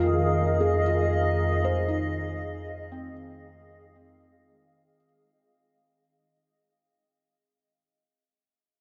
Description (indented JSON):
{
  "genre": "ambient",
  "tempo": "58 BPM",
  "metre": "3/4",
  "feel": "straight",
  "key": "unclear",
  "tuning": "A4 = 440 Hz",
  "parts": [
    { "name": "granular cloud pad", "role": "sustained chords", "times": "0.0-5.0 s", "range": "Ab4 to F5", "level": "-30 LUFS", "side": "equal", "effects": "built-in reverb" },
    { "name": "felt-muted upright piano", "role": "arpeggios", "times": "0.0-6.3 s", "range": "F3 to C5", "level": "-32 LUFS", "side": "equal", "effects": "delay" },
    { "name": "round analog bass", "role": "bass", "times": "0.0-4.9 s", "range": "F2", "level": "-31 LUFS", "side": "equal", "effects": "none" },
    { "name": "organ-like drone", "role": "drone", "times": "0.0-5.1 s", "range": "Eb3", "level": "-38 LUFS", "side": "equal", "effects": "ensemble chorus, built-in reverb" }
  ],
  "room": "wet cathedral reverb, RT60 5.6 s",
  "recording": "nothing above 7.8 kHz",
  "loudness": "-25 LUFS",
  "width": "mono",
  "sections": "0.0-5.0 A section",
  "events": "fade-out 0.0-5.0",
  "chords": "0.0 Fm7",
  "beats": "0.81 | 1.85 2.88 3.92"
}